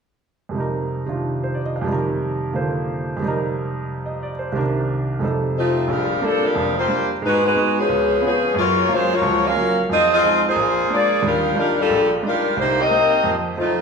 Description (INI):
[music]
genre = jazz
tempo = 180 BPM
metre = 4/4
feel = swing 63% on 8ths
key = unclear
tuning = A4 = 440 Hz
[part]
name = clear baby grand piano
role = accompaniment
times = 0.5-13.8 s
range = F1 to F5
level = -22 LUFS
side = right 2 dB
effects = none
[part]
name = mellow saxophone section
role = melody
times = 5.6-13.8 s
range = F3 to F5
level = -17 LUFS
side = left 1 dB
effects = none
[sound]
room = wet recital hall reverb, RT60 1.4 s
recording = recorded in a church or concert hall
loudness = -17 LUFS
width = side -5 dB against mid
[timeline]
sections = 0.5-5.9 A section; 5.9-13.8 B section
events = none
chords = 0.5 F7sus4; 4.5 Cm7; 5.2 F7; 5.9 Bb6; 7.2 Abm7; 7.9 Db7; 8.6 Gbmaj7; 9.9 Fm7; 10.6 Bb7; 11.2 Ebmaj9; 12.6 Cm7; 13.2 F7